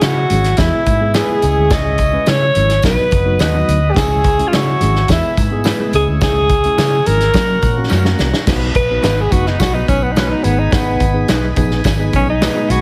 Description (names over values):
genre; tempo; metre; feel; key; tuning
uptempo 1960s-style soul; 106 BPM; 4/4; straight; B major; A4 = 440 Hz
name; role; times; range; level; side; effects
breathy alto saxophone; melody; 0.0-12.8 s; B3 to D#5; -19 LUFS; equal; none
mellow tine electric piano; accompaniment; 0.0-12.8 s; F#3 to B4; -26 LUFS; equal; none
tonewheel organ; sustained chords; 0.0-12.8 s; E4 to B5; -30 LUFS; equal; slow rotary speaker
electric guitar through a small old amp; stabs; 0.0-12.6 s; B3 to C#5; -29 LUFS; equal; slapback echo
vintage muted fingered electric bass; bass; 0.0-12.8 s; F#1 to F#3; -20 LUFS; equal; none
natural country drum kit; drums; 0.0-12.8 s; crash cymbal, hi-hat, kick drum, snare drum; -20 LUFS; equal; none
congas; percussion; 0.0-12.7 s; none; -31 LUFS; equal; none
tambourine; percussion; 0.0-12.8 s; none; -38 LUFS; equal; none
room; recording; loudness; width
light reverb; heavily compressed radio sound, multiband compression; -14 LUFS; mono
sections
0.0-8.5 A section; 8.5-12.8 B section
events
drum fill 7.9-8.5; alto saxophone solo 8.5-12.8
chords
0.0 C#m; 0.6 E; 1.4 C#m; 2.8 B; 4.0 C#m; 5.1 E; 5.9 C#m; 7.3 F#; 8.5 B; 10.4 G#m